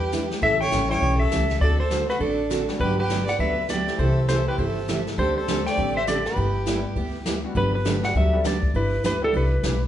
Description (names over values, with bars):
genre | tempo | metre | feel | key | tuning
country, western swing | 202 BPM | 4/4 | swing 61% on 8ths | G major | A4 = 440 Hz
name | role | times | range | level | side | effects
clean lap steel guitar | melody | 0.0-9.8 s | A4 to G5 | -26 LUFS | left 1 dB | none
clear fiddle | second line | 0.0-7.2 s | D4 to D5 | -29 LUFS | right 2 dB | none
picked steel-string acoustic guitar | accompaniment | 0.0-9.7 s | C3 to B4 | -28 LUFS | right 3 dB | none
upright bass | bass | 0.0-9.9 s | G1 to E2 | -25 LUFS | left 1 dB | none
jazz brush drum kit | drums | 0.1-9.9 s | brushed snare drum, hi-hat, kick drum, snare drum | -30 LUFS | left 1 dB | none
bright upright piano | accompaniment | 0.9-9.3 s | G3 to A4 | -34 LUFS | left 2 dB | none
room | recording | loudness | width
wet large studio reverb, RT60 0.9 s | band playing live in one room, nothing above 10.8 kHz | -20 LUFS | side -11 dB against mid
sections
0.0-7.6 A section; 7.6-9.9 A section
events
none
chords
0.4 A7; 1.6 D7; 2.8 Gmaj7; 4.0 C6; 5.2 D7sus4; 6.4 G6; 7.6 Gmaj7; 8.7 Em7/G